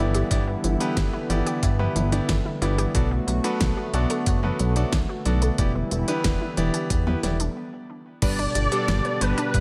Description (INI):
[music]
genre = synthwave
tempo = 91 BPM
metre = 4/4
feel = straight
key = G major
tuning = A4 = 438 Hz
[part]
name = warm analog pad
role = sustained chords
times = 0.0-9.6 s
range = B2 to G4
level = -32 LUFS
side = equal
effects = chorus, vintage 12-bit sampler grit, sidechain pumping
[part]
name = analog pluck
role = arpeggios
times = 0.0-9.6 s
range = E3 to B4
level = -34 LUFS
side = equal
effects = chorus, tape echo
[part]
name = bright electric grand piano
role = stabs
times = 0.0-9.6 s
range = G3 to D5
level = -32 LUFS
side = equal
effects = tape echo
[part]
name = chorused synth bass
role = bass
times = 0.0-9.6 s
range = E1 to G2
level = -27 LUFS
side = equal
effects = sidechain pumping
[part]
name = pop drum kit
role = drums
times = 0.1-9.6 s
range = crash cymbal, hi-hat, snare drum, toms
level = -33 LUFS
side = equal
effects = studio reverb
[part]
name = electronic kick drum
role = drums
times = 0.3-9.6 s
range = none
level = -28 LUFS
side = equal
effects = studio reverb
[part]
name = unison lead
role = melody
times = 8.2-9.6 s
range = B4 to D5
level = -28 LUFS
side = equal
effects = ensemble chorus, digital delay
[sound]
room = light reverb, digital ambience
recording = none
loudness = -24 LUFS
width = mono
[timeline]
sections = 0.0-8.2 A section; 8.2-9.6 B section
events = stop 7.6-8.2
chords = 0.0 G6; 2.9 Bm7; 5.6 Em7; 8.2 G